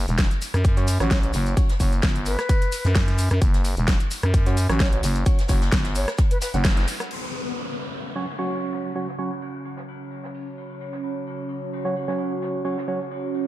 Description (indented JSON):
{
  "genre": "bass house",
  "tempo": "130 BPM",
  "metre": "4/4",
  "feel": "swing 54% on 16ths",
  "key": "unclear",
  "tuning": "A4 = 440 Hz",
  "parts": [
    { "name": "growling FM bass", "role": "bass", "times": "0.0-6.9 s", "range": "E1 to F#2", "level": "-22 LUFS", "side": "equal", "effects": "tube saturation, sidechain pumping" },
    { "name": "big-room dance drum kit", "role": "drums", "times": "0.1-7.2 s", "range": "crash cymbal, hi-hat, rim click, snare drum", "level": "-28 LUFS", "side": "equal", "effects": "overdrive" },
    { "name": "maracas", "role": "percussion", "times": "0.1-7.1 s", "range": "none", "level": "-37 LUFS", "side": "left 3 dB", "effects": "none" },
    { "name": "electronic kick drum", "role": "drums", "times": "0.2-6.7 s", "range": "none", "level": "-20 LUFS", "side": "equal", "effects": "overdrive" },
    { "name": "jazz brush drum kit", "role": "drums", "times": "0.2-13.5 s", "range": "hi-hat, ride cymbal, snare drum", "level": "-40 LUFS", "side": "left 2 dB", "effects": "high-pass filter on cymbals, low-pass filter on cymbals, high-pass filter on hats, low-pass filter on hats, high-pass filter on snare, low-pass filter on snare, high-pass filter on room, low-pass filter on room" },
    { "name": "percussive organ stab", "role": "stabs", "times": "0.8-13.0 s", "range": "F#3 to F#5", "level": "-29 LUFS", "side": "right 2 dB", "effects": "chorus, sidechain pumping, digital delay" },
    { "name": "mellow silver concert flute", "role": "melody", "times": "1.1-6.5 s", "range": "B4 to C#5", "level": "-32 LUFS", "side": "left 1 dB", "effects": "digital delay" },
    { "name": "dark analog pad", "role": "sustained chords", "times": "7.1-13.5 s", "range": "C#4 to C#5", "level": "-31 LUFS", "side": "right 2 dB", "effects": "chorus, phaser, sidechain pumping" },
    { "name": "downlifter", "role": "sound effects", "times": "7.1-10.8 s", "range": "none", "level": "-33 LUFS", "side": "left 3 dB", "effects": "none" }
  ],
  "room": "studio ambience",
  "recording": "dark, warm production",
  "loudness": "-20 LUFS",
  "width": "side -15 dB against mid",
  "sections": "0.0-7.1 A section; 7.1-13.5 B section",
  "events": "band accent 6.6; filter sweep on synth stab 7.1-13.5",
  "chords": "0.0 F#5"
}